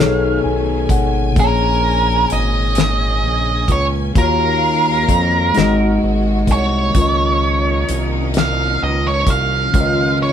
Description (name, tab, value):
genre	slow six-eight R&B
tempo	43 BPM (dotted quarters)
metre	6/8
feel	straight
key	Db major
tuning	A4 = 441 Hz
part	octave-fuzz lead guitar	melody	0.0-10.3 s	Bb4 to Gb5	-18 LUFS	right 2 dB	distortion
part	mellow tine electric piano	accompaniment	0.0-10.3 s	Bb2 to Ab5	-20 LUFS	left 3 dB	none
part	clear studio string section	sustained chords	0.0-10.3 s	C3 to Ab5	-27 LUFS	equal	none
part	smooth synth bass	bass	0.0-10.3 s	Ab1 to F2	-19 LUFS	right 1 dB	none
part	damped 70s drum kit	drums	0.0-10.0 s	hi-hat, kick drum, snare drum	-16 LUFS	left 1 dB	none
room	moderate studio reverb, RT60 0.8 s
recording	band playing live in one room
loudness	-14 LUFS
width	side -9 dB against mid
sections	0.0-10.3 A section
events	tine electric piano fill 0.0-1.4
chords	0.0 Cb13; 1.4 Bbm7; 4.2 Ebm9; 5.6 Ab9; 6.9 Db69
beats	| 1.37 2.76 | 4.16 5.55 | 6.95 8.34 | 9.74